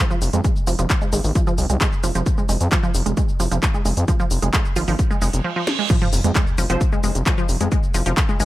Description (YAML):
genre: driving peak-time techno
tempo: 132 BPM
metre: 4/4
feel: straight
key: F minor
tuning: A4 = 439 Hz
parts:
  - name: resonant blip pluck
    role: riff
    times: 0.0-8.4 s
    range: F3 to Ab3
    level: -25 LUFS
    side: right 2 dB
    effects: chorus, tube saturation, sidechain pumping, dub echo
  - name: techno drum kit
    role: drums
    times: 0.1-8.4 s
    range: crash cymbal, handclaps, hi-hat, shaker, snare drum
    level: -25 LUFS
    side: equal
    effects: sidechain pumping on hats, sidechain pumping on perc, sidechain pumping on cymbals
  - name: gritty driven synth bass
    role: bass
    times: 0.2-8.4 s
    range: F1 to F2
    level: -21 LUFS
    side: equal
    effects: sidechain pumping
  - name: electronic kick drum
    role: drums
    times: 0.4-8.3 s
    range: none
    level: -20 LUFS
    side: equal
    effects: none
  - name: reverse cymbal and sub drop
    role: sound effects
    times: 5.3-7.7 s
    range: none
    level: -28 LUFS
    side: right 2 dB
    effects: none
  - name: rave stab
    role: stabs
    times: 6.7-6.8 s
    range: F3 to C5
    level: -30 LUFS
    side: right 1 dB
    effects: chorus, built-in reverb, sidechain pumping, dub echo
room: little or no reverb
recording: none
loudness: -17 LUFS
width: side -16 dB against mid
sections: 0.0-5.9 A section; 5.9-8.4 B section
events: filter sweep on synth arpeggio sound 0.0-5.9; reverse cymbal 5.3-5.9; drum fill 5.7; drop 5.9-8.4; impact 5.9-7.7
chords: 0.0 F5